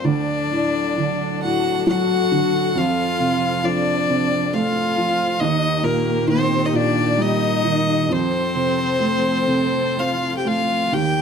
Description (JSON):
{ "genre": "celtic folk, Celtic slow air", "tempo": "63-69 BPM", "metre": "3/4", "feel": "rubato", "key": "unclear", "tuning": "A4 = 440 Hz", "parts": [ { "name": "clear fiddle", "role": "melody", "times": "0.0-11.2 s", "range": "Bb4 to G5", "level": "-22 LUFS", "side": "equal", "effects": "none" }, { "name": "rich viola", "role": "second line", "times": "0.0-11.2 s", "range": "Bb3 to G4", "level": "-24 LUFS", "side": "left 7 dB", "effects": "none" }, { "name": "dark upright piano", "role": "accompaniment", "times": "0.0-11.2 s", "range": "D2 to C4", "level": "-21 LUFS", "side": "right 3 dB", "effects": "none" }, { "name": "warm symphonic string section", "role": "sustained chords", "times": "0.0-11.2 s", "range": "Eb3 to A4", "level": "-29 LUFS", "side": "equal", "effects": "none" } ], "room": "light reverb", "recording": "close, detailed microphones", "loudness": "-17 LUFS", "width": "side -6 dB against mid", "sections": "0.1-11.2 A section", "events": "none", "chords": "0.1 D; 2.8 F; 5.4 Eb; 8.1 F" }